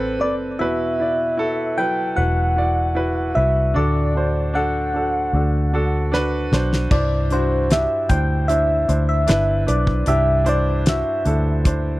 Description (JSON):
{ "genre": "pop ballad", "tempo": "76 BPM", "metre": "4/4", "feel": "straight", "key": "unclear", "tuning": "A4 = 439 Hz", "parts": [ { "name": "clear grand piano", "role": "accompaniment", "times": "0.0-12.0 s", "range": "G2 to D5", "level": "-23 LUFS", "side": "right 1 dB", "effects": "none" }, { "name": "vintage muted fingered electric bass", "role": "bass", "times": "0.0-12.0 s", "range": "E1 to D2", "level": "-21 LUFS", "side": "equal", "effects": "none" }, { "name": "soft struck synth lead", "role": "melody", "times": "0.2-11.7 s", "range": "C5 to G5", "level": "-22 LUFS", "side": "left 1 dB", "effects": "chorus" }, { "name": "damped 70s drum kit", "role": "drums", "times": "6.1-11.8 s", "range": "crash cymbal, hi-hat, kick drum, snare drum", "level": "-20 LUFS", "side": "equal", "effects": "none" } ], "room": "light reverb", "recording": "dry, close 1970s-style studio recording", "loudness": "-17 LUFS", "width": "side -18 dB against mid", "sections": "0.0-6.9 A section; 6.9-12.0 B section", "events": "drum fill 6.1-6.9; grand piano fill 11.6-12.0", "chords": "0.0 Amadd9; 0.6 Esus2; 3.8 D; 6.9 Cadd9" }